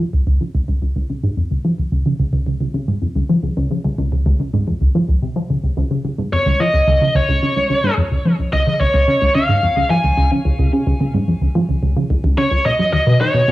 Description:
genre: ambient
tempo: 109 BPM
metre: 4/4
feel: straight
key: Db major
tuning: A4 = 439 Hz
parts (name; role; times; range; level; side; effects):
- tight sequenced synth; riff; 0.0-13.5 s; Db2 to F3; -16 LUFS; equal; chorus, phaser, tape echo
- biting lead guitar; melody; 6.3-13.5 s; Db5 to Ab5; -17 LUFS; equal; overdrive, plate reverb, tape echo
room: wet studio reverb, RT60 0.6 s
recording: home recording on cassette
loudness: -15 LUFS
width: side -16 dB against mid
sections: 0.0-13.5 A section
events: none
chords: 0.0 Db; 12.7 Cb

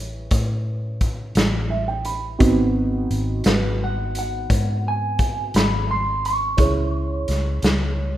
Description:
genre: slow blues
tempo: 57 BPM (dotted quarters)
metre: 12/8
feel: straight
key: unclear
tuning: A4 = 441 Hz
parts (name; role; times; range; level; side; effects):
- dark upright piano; accompaniment; 0.0-8.2 s; B3 to B5; -25 LUFS; right 3 dB; none
- vintage muted fingered electric bass; bass; 0.0-8.2 s; G#1 to A2; -24 LUFS; equal; none
- raw garage drum kit; drums; 0.3-7.8 s; hi-hat, kick drum, snare drum; -21 LUFS; equal; none
- electric guitar through a small old amp; melody; 3.5-7.6 s; B4 to C#6; -26 LUFS; right 1 dB; none
room: little or no reverb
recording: rough home demo mix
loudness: -19 LUFS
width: side -13 dB against mid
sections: 0.0-8.2 A section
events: upright piano fill 1.4-2.4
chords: 0.0 A7; 2.4 G#7#9; 6.6 C#m

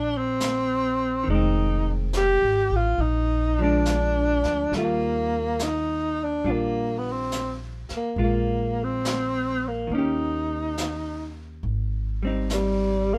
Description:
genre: jazz ballad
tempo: 70 BPM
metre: 4/4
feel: swing 68% on 8ths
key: Eb major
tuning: A4 = 440 Hz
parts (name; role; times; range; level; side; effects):
- dark tenor saxophone; melody; 0.0-13.2 s; G3 to G4; -27 LUFS; equal; none
- vintage hollow-body jazz guitar; accompaniment; 0.0-13.2 s; Eb3 to G4; -32 LUFS; equal; none
- upright bass; bass; 0.0-13.2 s; F1 to Eb2; -30 LUFS; equal; none
- jazz brush drum kit; drums; 0.4-13.2 s; brushed snare drum, hi-hat, snare drum; -37 LUFS; equal; none
room: light reverb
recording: none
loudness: -25 LUFS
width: mono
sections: 0.0-11.6 A section; 11.6-13.2 B section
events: none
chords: 0.0 Eb6; 1.3 Fm7; 3.0 Bb7; 4.7 Ebmaj9; 8.2 Bb5; 9.9 Eb7; 11.6 Abmaj7

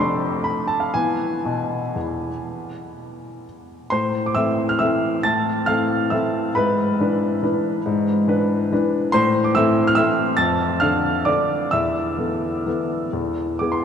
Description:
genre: classical, piano waltz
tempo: 117-148 BPM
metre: 3/4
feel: rubato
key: A minor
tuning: A4 = 440 Hz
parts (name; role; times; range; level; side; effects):
- clear baby grand piano; solo; 0.0-13.8 s; F1 to A6; -18 LUFS; equal; none
room: wet cathedral reverb, RT60 5.8 s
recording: in a vast, echoing space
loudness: -18 LUFS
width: side -8 dB against mid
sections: 0.0-3.9 A section; 3.9-13.8 B section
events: none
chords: 0.0 Dm/F; 0.9 E; 3.9 Am; 6.6 E7/G#; 9.1 Am; 10.4 Dm/F; 11.7 Esus4; 13.1 E

